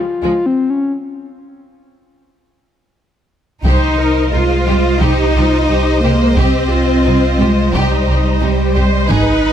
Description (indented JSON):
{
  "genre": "cinematic, hybrid orchestral and electronic film score",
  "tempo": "88 BPM",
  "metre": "4/4",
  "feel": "straight",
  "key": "C minor",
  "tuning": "A4 = 440 Hz",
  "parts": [
    { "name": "breathy flute-like synth lead", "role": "melody", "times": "0.0-0.9 s", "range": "C4 to F4", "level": "-16 LUFS", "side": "left 3 dB", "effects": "chorus, tape echo" },
    { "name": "clear symphonic violin section", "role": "second line", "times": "0.2-9.5 s", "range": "Ab3 to C5", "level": "-21 LUFS", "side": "left 3 dB", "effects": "none" },
    { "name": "rich symphonic viola section", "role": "accompaniment", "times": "0.2-9.5 s", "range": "F3 to C5", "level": "-21 LUFS", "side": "right 2 dB", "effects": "none" },
    { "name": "rich studio cello section", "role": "bass", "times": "0.2-9.5 s", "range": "Db2 to F4", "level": "-16 LUFS", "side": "right 1 dB", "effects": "none" },
    { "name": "warm symphonic violin section", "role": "melody", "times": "3.6-9.5 s", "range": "Eb5", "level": "-26 LUFS", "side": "left 4 dB", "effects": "none" },
    { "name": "rich symphonic double bass section", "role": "bass", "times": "3.6-9.2 s", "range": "Ab1 to C2", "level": "-20 LUFS", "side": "right 2 dB", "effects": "none" },
    { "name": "sub bass with octave", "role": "bass", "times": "3.6-9.5 s", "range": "Ab1 to C2", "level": "-17 LUFS", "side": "equal", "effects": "none" },
    { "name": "taiko ensemble", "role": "drums", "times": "3.6-9.5 s", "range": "none", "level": "-20 LUFS", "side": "equal", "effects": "none" }
  ],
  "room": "light reverb",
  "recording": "close, detailed microphones",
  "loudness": "-11 LUFS",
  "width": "side -9 dB against mid",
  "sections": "0.0-3.6 A section; 3.6-9.5 B section",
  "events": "break 0.9-3.6",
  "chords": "0.0 Db; 0.9 N.C.; 3.6 Cm"
}